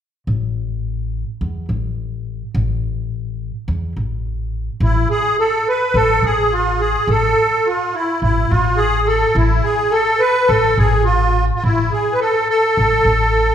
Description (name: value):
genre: Arabic maqam ensemble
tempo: 106 BPM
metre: 4/4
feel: straight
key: A maqam suznak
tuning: A4 = 444 Hz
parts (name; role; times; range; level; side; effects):
- upright bass; bass; 0.3-13.5 s; A1 to E2; -19 LUFS; left 1 dB; none
- musette accordion; melody; 4.8-13.5 s; E4 to B4; -15 LUFS; equal; none
room: wet large studio reverb, RT60 1.4 s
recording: band playing live in one room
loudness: -15 LUFS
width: side -9 dB against mid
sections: 0.3-4.8 A section; 4.8-13.5 B section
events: none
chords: none